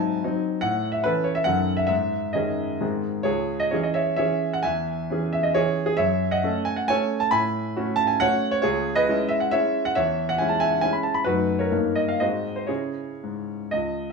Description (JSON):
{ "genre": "classical, romantic triple-time dance for piano with dotted rhythms", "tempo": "110-155 BPM", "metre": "3/4", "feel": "rubato", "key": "C# minor", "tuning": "A4 = 439 Hz", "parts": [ { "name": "clear concert grand piano", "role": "solo", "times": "0.0-14.1 s", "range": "C#2 to B5", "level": "-21 LUFS", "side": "equal", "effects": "none" } ], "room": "moderate large studio reverb, RT60 0.9 s", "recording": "small room ambience", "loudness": "-21 LUFS", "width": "side -4 dB against mid", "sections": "0.0-3.3 A section; 3.3-14.1 B section", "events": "none", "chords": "0.0 G#7; 0.6 A; 1.5 D#m7b5/F#; 1.9 G#sus4; 2.8 G#; 3.3 C#m; 4.6 C#m/E; 6.0 F#m; 7.3 F#m/A; 8.6 C#m; 10.0 C#m/E; 11.3 D#dim/F#; 11.7 D#7/G; 12.2 G#7; 12.7 C#m" }